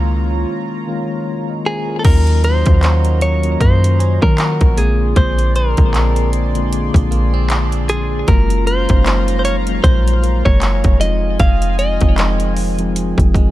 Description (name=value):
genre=contemporary R&B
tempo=77 BPM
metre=4/4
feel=swing 58% on 16ths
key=Eb dorian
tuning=A4 = 439 Hz
part: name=mellow tine electric piano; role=accompaniment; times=0.0-13.5 s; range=D3 to Eb5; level=-22 LUFS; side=left 4 dB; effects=fast stereo tremolo
part: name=chorused pulse-width pad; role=sustained chords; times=0.0-13.5 s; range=Gb3 to C6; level=-27 LUFS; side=right 1 dB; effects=none
part: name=clean 808-style bass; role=bass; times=0.0-13.5 s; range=F1 to Eb3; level=-15 LUFS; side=equal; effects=none
part: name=direct-recorded clean electric guitar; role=melody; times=1.7-12.5 s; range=Ab4 to F5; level=-20 LUFS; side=equal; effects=ping-pong delay
part: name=direct-recorded clean electric guitar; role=arpeggios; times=2.0-13.5 s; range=F2 to Gb4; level=-27 LUFS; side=right 7 dB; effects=ping-pong delay
part: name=trap drum kit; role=drums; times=2.0-13.5 s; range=crash cymbal, handclaps, hi-hat, kick drum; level=-16 LUFS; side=equal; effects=none
room=digital ambience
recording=none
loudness=-12 LUFS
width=side -15 dB against mid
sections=0.0-2.0 A section; 2.0-13.5 B section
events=break 0.5-2.0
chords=0.0 Db6; 2.0 Ebm7; 4.8 Bb9; 8.3 Gbmaj7; 11.0 Fm7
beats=0.49 1.27 | 2.05 2.83 3.60 4.38 | 5.16 5.94 6.72 7.50 | 8.28 9.06 9.84 10.62 | 11.40 12.18 12.96